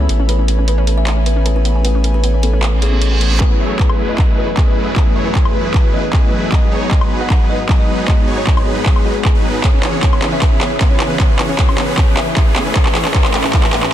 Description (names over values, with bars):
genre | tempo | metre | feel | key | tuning
future bass | 154 BPM | 4/4 | half-time | unclear | A4 = 439 Hz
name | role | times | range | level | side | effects
kalimba | melody | 0.0-13.9 s | G#4 to F#5 | -23 LUFS | left 1 dB | sidechain pumping, low-pass filter, dub echo
tine electric piano | accompaniment | 0.0-9.7 s | E3 to B4 | -25 LUFS | left 3 dB | medium stereo tremolo, sidechain pumping, digital delay
airy breathy pad | sustained chords | 0.0-13.9 s | F#2 to B5 | -28 LUFS | equal | chorus, sidechain pumping
wide unison pluck | arpeggios | 0.0-3.3, 9.6-13.9 s | B3 to C#5 | -27 LUFS | left 2 dB | sidechain pumping, digital delay
saturated sub bass | bass | 0.0-3.4 s | A1 | -14 LUFS | equal | sidechain pumping
pop drum kit | drums | 0.1-13.9 s | handclaps, hi-hat, woodblock | -20 LUFS | equal | studio ambience
reverse cymbal and riser | sound effects | 2.8-13.9 s | none | -28 LUFS | right 3 dB | none
supersaw chords | riff | 3.4-13.8 s | E3 to C#5 | -21 LUFS | right 1 dB | sidechain pumping, low-pass filter
electronic kick drum | drums | 3.4-13.6 s | none | -14 LUFS | equal | studio ambience
room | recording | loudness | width
light reverb | dense, heavily limited modern master, faint mains hum | -12 LUFS | side -11 dB against mid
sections
0.0-3.4 A section; 3.4-13.9 B section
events
reverse cymbal 2.8-3.4; build-up 3.4-13.9; drum fill 3.4-13.9; filter sweep on kalimba 3.4-13.9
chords
0.1 Amaj9; 3.4 F#m11; 6.5 G#m7; 9.6 C#m7; 12.6 Amaj9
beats
| 0.29 0.68 1.07 1.46 | 1.85 2.24 2.63 3.02 | 3.40 3.79 4.18 4.57 | 4.96 5.35 5.74 6.13 | 6.52 6.91 7.30 7.69 | 8.08 8.47 8.86 9.25 | 9.64 10.03 10.42 10.81 | 11.20 11.59 11.98 12.37 | 12.76 13.15 13.54 13.93